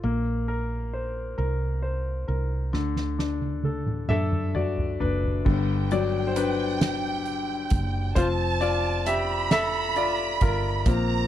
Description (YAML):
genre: six-eight pop ballad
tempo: 44 BPM (dotted quarters)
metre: 6/8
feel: straight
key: unclear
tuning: A4 = 438 Hz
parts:
  - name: clear concert grand piano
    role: accompaniment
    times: 0.0-11.3 s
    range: D3 to E5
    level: -27 LUFS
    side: left 4 dB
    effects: none
  - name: woody fretless electric bass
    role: bass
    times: 0.0-11.3 s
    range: F1 to F#2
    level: -28 LUFS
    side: right 1 dB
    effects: wide subtle chorus
  - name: soft-mallet drum kit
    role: drums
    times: 2.7-11.1 s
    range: crash cymbal, hi-hat, kick drum, snare drum, toms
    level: -27 LUFS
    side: right 1 dB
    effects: none
  - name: warm studio violin section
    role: second line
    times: 5.5-11.3 s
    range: G5 to B5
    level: -29 LUFS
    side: right 6 dB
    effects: slapback echo
room: little or no reverb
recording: dry, close 1970s-style studio recording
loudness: -23 LUFS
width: side -11 dB against mid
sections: 0.0-5.5 A section; 5.5-11.3 B section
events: drum fill 2.7-5.5; grand piano solo 5.5-11.3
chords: 0.0 Bbsus2; 2.7 D; 5.5 G; 8.2 F